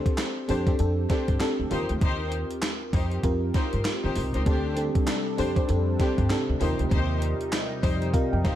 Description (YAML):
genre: R&B, new jack swing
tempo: 98 BPM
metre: 4/4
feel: swing 60% on 16ths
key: unclear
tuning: A4 = 441 Hz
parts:
  - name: FM electric piano with soft pad layer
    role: accompaniment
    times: 0.0-8.6 s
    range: C4 to G5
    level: -29 LUFS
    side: equal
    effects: chorus
  - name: gated 80s digital drum machine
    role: drums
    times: 0.1-8.6 s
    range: handclaps, hi-hat, kick drum, snare drum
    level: -26 LUFS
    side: equal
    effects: gated reverb, gated reverb snare
  - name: warm studio string section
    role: stabs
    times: 0.5-8.6 s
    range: D4 to C5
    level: -34 LUFS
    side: left 4 dB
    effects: ping-pong delay
  - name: upright bass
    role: bass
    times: 0.5-8.6 s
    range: C2 to G2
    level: -28 LUFS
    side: equal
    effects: none
  - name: phased analog pad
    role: sustained chords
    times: 4.5-8.6 s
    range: C3 to Eb4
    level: -33 LUFS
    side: equal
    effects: phaser, chorus
room: digital ambience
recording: dark, warm production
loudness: -23 LUFS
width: side -12 dB against mid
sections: 0.0-8.6 A section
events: FM electric piano fill 7.5-8.6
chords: 0.0 D7sus4; 1.7 Eb6; 4.5 D7sus4; 6.6 Eb6